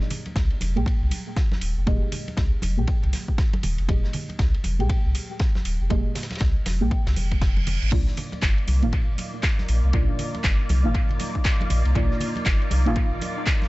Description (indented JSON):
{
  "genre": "deep house",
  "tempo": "119 BPM",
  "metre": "4/4",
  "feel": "swing 61% on 16ths",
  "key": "unclear",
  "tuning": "A4 = 436 Hz",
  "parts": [
    { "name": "deep mellow chord stab", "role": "stabs", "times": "0.0-13.7 s", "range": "Bb3 to G5", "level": "-30 LUFS", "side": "right 1 dB", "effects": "chorus, phaser, cassette tape, sidechain pumping, analog delay" },
    { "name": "vintage drum kit", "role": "drums", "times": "0.0-13.7 s", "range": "ride cymbal, snare drum", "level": "-38 LUFS", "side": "left 1 dB", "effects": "sidechain pumping on cymbals, high-pass filter on cymbals, high-pass filter on snare, high-pass filter on room" },
    { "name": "house drum kit", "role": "drums", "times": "0.1-13.6 s", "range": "crash cymbal, handclaps, hi-hat", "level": "-32 LUFS", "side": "right 1 dB", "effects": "analog delay" },
    { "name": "congas", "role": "percussion", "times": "0.1-13.7 s", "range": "none", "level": "-35 LUFS", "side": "right 1 dB", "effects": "sidechain pumping on perc, analog delay" },
    { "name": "sub bass with octave", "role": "bass", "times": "0.4-13.2 s", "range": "Eb1 to C2", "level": "-23 LUFS", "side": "equal", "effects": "sidechain pumping" },
    { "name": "electronic kick drum", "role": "drums", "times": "0.4-13.6 s", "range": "none", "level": "-23 LUFS", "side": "equal", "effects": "none" },
    { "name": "reverse cymbal", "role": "sound effects", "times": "7.1-7.9 s", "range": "none", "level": "-34 LUFS", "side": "right 6 dB", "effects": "none" },
    { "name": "soft string machine", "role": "sustained chords", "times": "7.9-13.7 s", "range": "Bb3 to D5", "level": "-33 LUFS", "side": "left 1 dB", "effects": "ensemble chorus, sidechain pumping" }
  ],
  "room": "small room ambience",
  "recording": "echo-heavy mix, nothing above 7.9 kHz",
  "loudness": "-21 LUFS",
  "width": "side -19 dB against mid",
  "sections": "0.0-13.7 A section",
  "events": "filter sweep on synth stab 0.0-13.7; reverse cymbal 7.1-7.9",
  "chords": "0.0 Fm11; 7.9 Cm11"
}